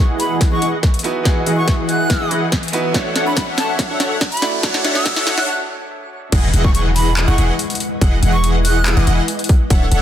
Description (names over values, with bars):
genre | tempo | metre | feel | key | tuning
future bass | 142 BPM | 4/4 | half-time | E major | A4 = 440 Hz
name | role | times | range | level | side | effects
breathy bright jazz flute | melody | 0.0-9.1 s | A5 to F#6 | -24 LUFS | right 2 dB | sidechain pumping, digital delay
bright baby grand piano | accompaniment | 0.0-6.3 s | A3 to D#5 | -25 LUFS | right 4 dB | sidechain pumping, dub echo
ethereal airy pad | sustained chords | 0.2-10.0 s | E3 to A5 | -28 LUFS | left 2 dB | ensemble chorus, built-in reverb, tremolo, sidechain pumping
big bright polysynth | riff | 0.0-10.0 s | E3 to F#5 | -21 LUFS | equal | ensemble chorus, sidechain pumping, dub echo
warm 808-style bass | bass | 0.0-10.0 s | D1 to E1 | -16 LUFS | equal | sidechain pumping, high-pass filter
riser and downlifter | sound effects | 2.3-9.7 s | none | -27 LUFS | left 1 dB | none
trap drum kit | drums | 0.2-10.0 s | crash cymbal, handclaps, hi-hat, snare drum | -22 LUFS | left 1 dB | overdrive
electronic kick drum | drums | 0.4-9.8 s | none | -15 LUFS | equal | overdrive
wide unison pluck | arpeggios | 6.3-10.0 s | F#5 | -29 LUFS | left 1 dB | sidechain pumping, dub echo
room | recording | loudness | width
light reverb, digital ambience | dense, heavily limited modern master, high-pass filter | -14 LUFS | side -10 dB against mid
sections
0.0-6.3 A section; 6.3-10.0 B section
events
build-up 0.0-6.3; drum fill 0.0-5.5; filter sweep on analog polysynth 0.0-6.3; filter sweep 0.0-6.3; riser 2.3-5.5; break 5.5-6.3; drop 6.3-10.0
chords
0.0 Emaj7; 2.9 Dmaj7; 6.3 Emaj7